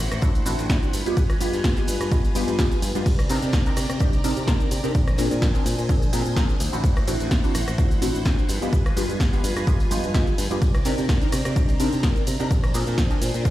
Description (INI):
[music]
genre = filtered disco house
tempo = 127 BPM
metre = 4/4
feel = swing 54% on 16ths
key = unclear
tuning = A4 = 442 Hz
[part]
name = string machine, full ensemble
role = sustained chords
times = 0.0-13.5 s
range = C4 to Bb5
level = -31 LUFS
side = equal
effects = phaser, ensemble chorus, sidechain pumping
[part]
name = modern bright fingered electric bass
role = bass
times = 0.0-13.5 s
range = G1 to C3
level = -27 LUFS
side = equal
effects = sidechain pumping
[part]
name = punchy analog drum machine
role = drums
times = 0.1-13.5 s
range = crash cymbal, hi-hat, ride cymbal, rim click, shaker, snare drum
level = -30 LUFS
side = equal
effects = none
[part]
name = tambourine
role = percussion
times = 0.1-13.5 s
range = none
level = -40 LUFS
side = left 2 dB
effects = sidechain pumping on perc
[part]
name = funky polysynth comp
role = accompaniment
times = 0.2-13.5 s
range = Ab3 to Bb4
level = -28 LUFS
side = equal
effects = chorus, phaser, sidechain pumping
[part]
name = electronic kick drum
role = drums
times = 0.2-13.5 s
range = none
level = -22 LUFS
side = equal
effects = none
[sound]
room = light reverb, digital ambience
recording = played on a big sound system in a bare room, stone room reverb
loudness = -19 LUFS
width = side -14 dB against mid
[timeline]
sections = 0.0-13.5 A section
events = none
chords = 0.0 D9; 0.9 G7b9; 3.1 Cm9; 4.9 Bb9; 6.6 D9; 8.5 G7b9; 10.6 Cm9; 12.5 Bb9